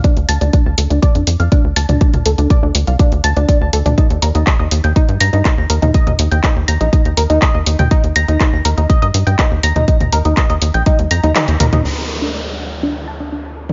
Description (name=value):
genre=melodic techno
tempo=122 BPM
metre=4/4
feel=straight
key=D phrygian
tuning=A4 = 440 Hz
part: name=tight sequenced synth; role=arpeggios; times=0.0-13.7 s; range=D4 to Bb5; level=-21 LUFS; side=equal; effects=chorus, phaser, vintage 12-bit sampler grit, sidechain pumping, dub echo
part: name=electronic kick drum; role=drums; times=0.0-11.0 s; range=none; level=-15 LUFS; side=equal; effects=studio reverb
part: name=house drum kit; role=drums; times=0.0-13.7 s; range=handclaps, hi-hat, toms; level=-21 LUFS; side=equal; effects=studio reverb
part: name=tight sequencer bass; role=bass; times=0.2-13.7 s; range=Bb1 to G2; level=-18 LUFS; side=equal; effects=sidechain pumping
part: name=downlifter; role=sound effects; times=11.8-13.7 s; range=none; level=-26 LUFS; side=equal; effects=none
room=light reverb, digital ambience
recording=nothing above 7.5 kHz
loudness=-14 LUFS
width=mono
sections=0.0-11.8 A section; 11.8-13.7 B section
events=filter sweep on synth arpeggio sound 0.0-11.8, 11.8-13.7; drum fill 10.9-11.8; kick drops out 11.4-11.8; band accent 11.4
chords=0.0 Dm; 4.0 Eb; 11.8 D5